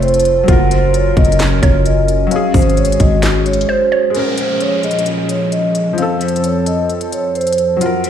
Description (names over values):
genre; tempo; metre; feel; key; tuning
hip hop, trap; 131 BPM; 4/4; half-time; Bb minor; A4 = 440 Hz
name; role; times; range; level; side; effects
vibraphone with soft mallets; melody; 0.0-8.1 s; Bb4 to Gb5; -16 LUFS; right 3 dB; tape echo
felt-muted upright piano; accompaniment; 0.0-8.1 s; F3 to Bb4; -20 LUFS; left 7 dB; none
hollow soft pad; sustained chords; 0.0-8.1 s; F2 to Bb4; -21 LUFS; left 1 dB; chorus
growling 808-style bass; bass; 0.0-3.7 s; F1 to Ab1; -15 LUFS; equal; none
trap drum kit; drums; 0.0-8.1 s; handclaps, hi-hat, kick drum, snare drum; -17 LUFS; equal; none
mallet-like synth pluck; second line; 1.6-4.1 s; C5 to Db5; -22 LUFS; right 7 dB; chorus, tape echo
downlifter; sound effects; 4.1-7.8 s; none; -26 LUFS; right 2 dB; none
room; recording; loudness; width
light reverb; played on a big sound system in a bare room, large studio reverb; -12 LUFS; side -9 dB against mid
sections
0.0-4.1 A section; 4.1-8.1 B section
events
silent gap 3.7-4.1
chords
0.5 Gbmaj7; 2.3 Ab7sus4; 4.1 Bbm7; 6.0 F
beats
0.02 | 0.48 0.94 1.40 1.86 | 2.31 2.77 3.23 3.69 | 4.15 4.60 5.06 5.52 | 5.98 6.44 6.89 7.35 | 7.81